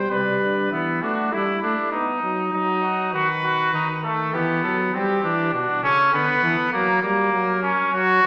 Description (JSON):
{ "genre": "classical, imitative canzona for brass ensemble", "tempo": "100 BPM", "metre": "4/4", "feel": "straight", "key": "unclear", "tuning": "A4 = 443 Hz", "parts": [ { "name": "warm cornet", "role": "melody", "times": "0.0-8.3 s", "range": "D4 to E5", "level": "-31 LUFS", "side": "equal", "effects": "none" }, { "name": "warm trumpet", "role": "second line", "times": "0.0-8.3 s", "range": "A3 to C5", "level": "-23 LUFS", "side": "equal", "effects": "none" }, { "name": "dark trombone", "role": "accompaniment", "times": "0.0-8.3 s", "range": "B2 to B3", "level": "-28 LUFS", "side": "equal", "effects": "none" }, { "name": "dark bass trombone", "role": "bass", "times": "0.0-0.7 s", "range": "B2 to D3", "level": "-36 LUFS", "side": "equal", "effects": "none" } ], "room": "wet recital hall reverb, RT60 1.4 s", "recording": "none", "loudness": "-21 LUFS", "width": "mono", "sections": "0.7-8.3 A section", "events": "none", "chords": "0.0 G/B; 0.7 Em; 1.9 B; 3.1 B/D#; 4.3 Em; 5.5 Bm; 6.7 F#", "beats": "0.10 | 0.71 1.32 1.93 2.53 | 3.13 3.73 4.34 4.93 | 5.53 6.13 6.73 7.33 | 7.92" }